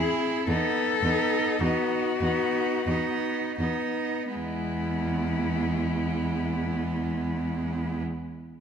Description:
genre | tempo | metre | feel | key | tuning
classical, lyrical piece for cello ensemble | 39-58 BPM | 3/4 | rubato | E major | A4 = 440 Hz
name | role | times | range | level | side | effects
rich cello | melody | 0.0-8.0 s | E4 to A4 | -30 LUFS | left 6 dB | none
rich cello | second line | 0.0-8.0 s | B3 to E4 | -30 LUFS | right 7 dB | none
rich cello | accompaniment | 0.0-8.0 s | G#3 to B#3 | -32 LUFS | left 4 dB | none
rich cello | bass | 0.0-8.0 s | E2 | -30 LUFS | right 1 dB | none
room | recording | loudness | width
moderate scoring stage reverb, RT60 1.7 s | none | -25 LUFS | side -7 dB against mid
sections
0.0-4.3 A section; 4.3-8.6 B section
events
slowing down 0.0-4.3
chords
0.5 B7/E; 4.3 E

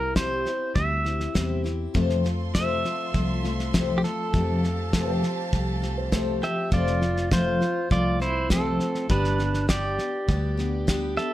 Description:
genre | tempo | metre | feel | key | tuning
honky-tonk and classic country | 101 BPM | 4/4 | straight | F major, F lydian from 6.7 s | A4 = 439 Hz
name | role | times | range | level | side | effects
pedal steel guitar | melody | 0.0-11.3 s | C4 to E5 | -28 LUFS | right 2 dB | none
picked steel-string acoustic guitar | accompaniment | 0.0-11.3 s | F2 to G4 | -27 LUFS | left 2 dB | none
vintage muted fingered electric bass | bass | 0.0-11.2 s | F1 to F2 | -28 LUFS | equal | none
cloth-damped thuddy drum kit | drums | 0.2-11.3 s | hi-hat, kick drum, snare drum | -26 LUFS | equal | none
warm studio violin section | sustained chords | 2.0-6.7 s | F4 to C6 | -37 LUFS | right 2 dB | none
dark upright piano | second line | 4.9-6.4 s | A4 to C5 | -34 LUFS | right 7 dB | none
room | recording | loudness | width
light reverb | close, detailed microphones | -22 LUFS | side -14 dB against mid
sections
0.0-6.7 A section; 6.7-11.3 B section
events
none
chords
0.0 C; 2.0 F; 4.3 Fadd9; 6.7 F; 9.1 G

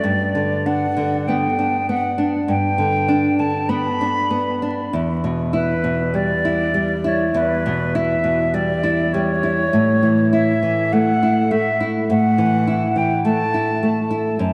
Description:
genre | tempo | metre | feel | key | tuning
romantic duo for flute and classical guitar | 50 BPM | 4/4 | uneven beats, rubato | unclear | A4 = 441 Hz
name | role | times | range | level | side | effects
silver concert flute | melody | 0.0-14.4 s | B4 to B5 | -24 LUFS | equal | analog delay
nylon-string guitar | accompaniment | 0.0-14.5 s | E2 to E4 | -21 LUFS | equal | lush chorus
room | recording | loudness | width
wet lush hall reverb, RT60 3.0 s | dreamy mix soaked in reverb, vinyl crackle | -19 LUFS | mono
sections
0.0-14.5 A section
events
none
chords
0.0 G; 4.9 Em; 9.7 A5

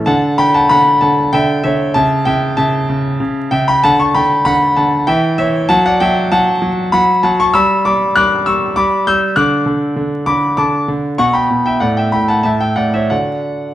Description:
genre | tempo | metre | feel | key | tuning
classical-period piano sonatina | 97 BPM | 3/4 | rubato | D major | A4 = 435 Hz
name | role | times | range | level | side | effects
clear concert grand piano | solo | 0.0-13.7 s | A2 to G6 | -11 LUFS | equal | none
room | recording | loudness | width
moderate recital hall reverb, RT60 1.4 s | vinyl crackle | -11 LUFS | side -13 dB against mid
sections
0.1-13.7 A section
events
none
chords
0.1 D; 1.3 Em7/D; 2.0 A/C#; 3.8 D; 5.1 Em6; 5.7 D/F#; 7.5 G; 9.4 D; 11.2 B5; 11.8 D/A; 12.5 A; 13.1 D

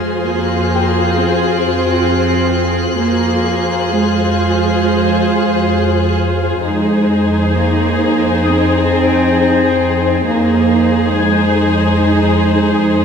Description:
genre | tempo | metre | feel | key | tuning
cinematic | 66 BPM | 4/4 | straight | F minor | A4 = 440 Hz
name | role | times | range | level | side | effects
warm studio violin section | melody | 0.0-13.0 s | C5 | -22 LUFS | left 5 dB | none
warm studio violin section | second line | 0.0-13.0 s | Ab4 | -20 LUFS | left 2 dB | none
rich studio viola section | accompaniment | 0.0-13.0 s | Eb4 to F4 | -19 LUFS | equal | none
dark studio double bass section | bass | 0.0-13.0 s | F2 | -19 LUFS | right 2 dB | none
warm studio cello section | bass | 0.0-13.0 s | Ab3 to C4 | -16 LUFS | right 2 dB | none
concert harp | texture | 0.0-13.0 s | G5 to Ab6 | -25 LUFS | left 7 dB | none
warm studio violin section | texture | 0.0-6.2 s | C6 to Gb6 | -26 LUFS | left 6 dB | none
room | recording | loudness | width
wet concert hall reverb, RT60 2.0 s | recorded in a church or concert hall | -12 LUFS | side -6 dB against mid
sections
0.0-13.0 A section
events
none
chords
0.0 Fm; 6.6 Ab6/F

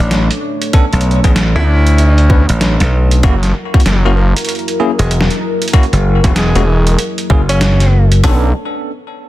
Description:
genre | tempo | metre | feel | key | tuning
glitch hop | 96 BPM | 4/4 | swing 62% on 16ths | B dorian | A4 = 442 Hz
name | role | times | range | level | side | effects
breathy tenor saxophone | melody | 0.0-8.1 s | G#3 to E4 | -22 LUFS | equal | vintage 12-bit sampler grit, digital delay
dark analog pad | sustained chords | 0.0-8.5 s | F#3 to C#5 | -22 LUFS | left 2 dB | chorus, phaser, sidechain pumping
slap bass | bass | 0.0-8.2 s | E1 to B1 | -11 LUFS | equal | none
boom bap sampler-style drum kit | drums | 0.1-8.2 s | hi-hat, rim click, snare drum | -19 LUFS | equal | studio reverb
bell-like tine electric piano | stabs | 0.7-8.5 s | A#3 to B4 | -21 LUFS | left 2 dB | medium stereo tremolo, vintage 12-bit sampler grit, sidechain pumping, digital delay
drum and bass drum kit | drums | 0.7-8.4 s | hi-hat, kick drum, snare drum | -10 LUFS | equal | studio reverb
gritty driven synth bass | bass | 1.6-8.5 s | E1 to D2 | -10 LUFS | equal | none
room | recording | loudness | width
little or no reverb | dense, heavily limited modern master | -9 LUFS | side -15 dB against mid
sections
0.0-8.2 A section; 8.2-9.3 B section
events
drop 0.0-8.2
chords
0.0 Bm9; 3.2 F#7; 8.2 Bm9

